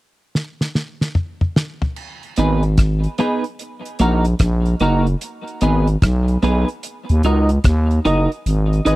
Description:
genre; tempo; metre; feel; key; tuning
roots reggae; 74 BPM; 4/4; swing 64% on 16ths; G# minor; A4 = 440 Hz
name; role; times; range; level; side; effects
damped 70s drum kit; drums; 0.4-9.0 s; crash cymbal, hi-hat, kick drum, rim click, snare drum, toms; -18 LUFS; equal; none
clean electric guitar; accompaniment; 2.4-9.0 s; A#3 to D#5; -20 LUFS; right 1 dB; analog chorus, tape echo
growling FM bass; bass; 2.4-9.0 s; F#1 to D#2; -16 LUFS; equal; none
room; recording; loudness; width
small room ambience; dry, close 1970s-style studio recording; -16 LUFS; side -18 dB against mid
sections
0.0-2.0 A section; 2.0-5.2 B section; 5.2-9.0 C section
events
drum fill 0.3-2.0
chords
0.0 N.C.; 2.0 G#m; 3.6 D#m; 5.2 G#m; 6.8 D#m; 8.5 G#m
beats
0.34 1.15 | 1.97 2.78 3.59 4.40 | 5.21 6.02 6.83 7.64 | 8.45

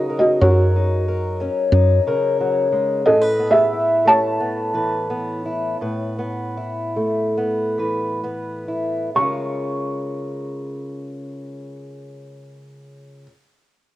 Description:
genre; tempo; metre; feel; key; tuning
folk; 62-92 BPM; 4/4; straight; unclear; A4 = 440 Hz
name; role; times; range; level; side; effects
felt-muted upright piano; melody; 0.0-13.2 s; Gb4 to Db6; -18 LUFS; right 1 dB; cassette tape
fingerpicked acoustic archtop guitar; accompaniment; 0.0-13.3 s; A2 to B4; -23 LUFS; left 2 dB; cassette tape
woody fretless electric bass; bass; 0.4-2.0 s; Gb2; -16 LUFS; right 1 dB; none
room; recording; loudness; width
light reverb, small room ambience; home recording on cassette; -18 LUFS; side -15 dB against mid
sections
0.0-9.1 A section; 9.1-13.0 B section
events
slowing down 3.0-9.1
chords
0.0 Gb6; 3.0 Aadd9; 9.1 Db6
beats
| 0.41 1.06 1.72 2.38 | 3.04 3.70 4.38 5.07 | 5.79 6.55 7.35 8.21 | 9.14 10.10 11.05 12.01

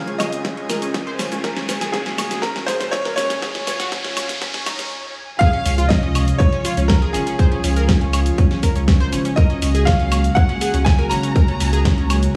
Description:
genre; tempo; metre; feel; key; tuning
progressive house; 121 BPM; 4/4; straight; Db major; A4 = 438 Hz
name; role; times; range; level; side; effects
bright grand piano; melody; 0.0-12.4 s; Ab4 to Bb5; -27 LUFS; equal; sidechain pumping, digital delay
airy breathy pad; sustained chords; 0.0-12.4 s; C3 to Ab4; -28 LUFS; equal; chorus, sidechain pumping
analog pluck; arpeggios; 0.0-12.2 s; Db4 to C5; -29 LUFS; equal; chorus, cassette tape, sidechain pumping, digital delay
riser, swell and impact; sound effects; 0.0-7.4 s; none; -32 LUFS; equal; none
twinkling granular texture; texture; 0.0-4.9 s; Ab5; -41 LUFS; equal; none
deep house drum kit; drums; 0.1-12.3 s; cabasa, hi-hat, snare drum, woodblock; -27 LUFS; equal; sidechain pumping on hats, sidechain pumping on perc
congas and cowbell; percussion; 0.1-4.8 s; none; -36 LUFS; equal; sidechain pumping on perc
electronic kick drum; drums; 0.4-12.0 s; none; -19 LUFS; equal; overdrive, high-pass filter on kick, high-pass filter on room
warm studio violin section; second line; 5.4-12.4 s; Ab4 to Bb5; -35 LUFS; equal; sidechain pumping, digital delay
round analog bass; bass; 5.7-12.3 s; Ab1 to Db2; -22 LUFS; equal; sidechain pumping
room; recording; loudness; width
light reverb, digital ambience; high-pass filter, small room ambience; -19 LUFS; mono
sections
0.0-5.4 A section; 5.4-12.4 B section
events
build-up 0.0-5.4; drum fill 0.0-4.9; riser 0.0-4.9; filter sweep on synth pluck 0.0-5.4; filter sweep on analog synth pad 0.0-5.4; filter sweep 0.0-5.4; swell 4.4-5.4; stop 4.9-5.4; drop 5.4-12.4; impact 5.4-7.4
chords
0.0 Dbmaj7; 1.4 Gbadd9/Db; 5.4 Dbmaj7; 9.4 Gbadd9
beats
0.45 0.94 | 1.44 1.94 2.43 2.93 | 3.42 3.92 4.42 4.91 | 5.41 5.90 6.40 6.89 | 7.39 7.89 8.38 8.88 | 9.37 9.87 10.37 10.86 | 11.36 11.85 12.35

